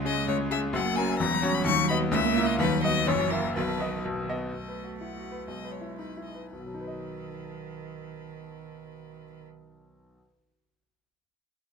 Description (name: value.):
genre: quick classical-period movement for piano trio.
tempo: 109-132 BPM.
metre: 2/4.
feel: straight.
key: B major.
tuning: A4 = 442 Hz.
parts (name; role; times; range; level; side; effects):
rich cello; second line; 0.0-9.4 s; D#3 to A#3; -34 LUFS; right 11 dB; none.
bright concert grand piano; accompaniment; 0.0-10.3 s; E1 to E5; -28 LUFS; left 2 dB; none.
clear violin; melody; 0.1-9.4 s; A#4 to C#6; -31 LUFS; left 9 dB; none.
room: light reverb.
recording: close, detailed microphones.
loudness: -25 LUFS.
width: side -5 dB against mid.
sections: 0.0-4.5 A section; 4.5-6.5 B section; 6.5-8.7 C section.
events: slowing down 4.0-6.5.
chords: 0.0 C#5; 0.7 F#; 1.2 F#7/E; 1.7 B/D#; 2.1 A#dim/C#; 2.6 B/D#; 3.1 F#7; 3.5 B; 4.5 B7; 5.5 E/B; 6.5 B.